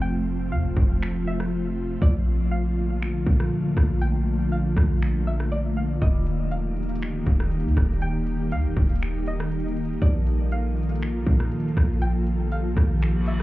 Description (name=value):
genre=hip hop, atmospheric cloud-rap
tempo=120 BPM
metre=4/4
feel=half-time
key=unclear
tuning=A4 = 440 Hz
part: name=string-like resonator pluck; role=melody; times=0.0-13.4 s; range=D5 to G5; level=-38 LUFS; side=equal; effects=chorus, tape echo
part: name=ethereal airy pad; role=sustained chords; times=0.0-13.4 s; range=C3 to A4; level=-27 LUFS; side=equal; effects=ensemble chorus, built-in reverb, sidechain pumping
part: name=clean 808-style bass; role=bass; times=0.0-13.4 s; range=Eb1 to Bb2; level=-25 LUFS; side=equal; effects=none
part: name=trap drum kit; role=drums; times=0.8-13.4 s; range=finger snaps, hi-hat, kick drum, rim click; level=-22 LUFS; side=equal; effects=none
part: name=cimbalom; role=texture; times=6.0-13.4 s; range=G3 to D6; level=-45 LUFS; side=left 2 dB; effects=none
part: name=reverse cymbal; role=sound effects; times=13.1-13.4 s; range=none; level=-44 LUFS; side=equal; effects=none
room=little or no reverb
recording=heard muffled through a wall, club reverb, EQ, nothing above 7.9 kHz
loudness=-21 LUFS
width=side -17 dB against mid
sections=0.0-13.4 A section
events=break 0.0-6.0; reverse cymbal 13.1-13.4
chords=0.0 Fmaj7; 2.0 Bbmaj7; 6.0 Ebmaj7; 10.0 Bbmaj7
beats=| 0.02 0.52 1.02 1.52 | 2.02 2.52 3.02 3.52 | 4.02 4.52 5.02 5.52 | 6.02 6.52 7.02 7.52 | 8.02 8.52 9.02 9.52 | 10.02 10.52 11.02 11.52 | 12.02 12.52 13.02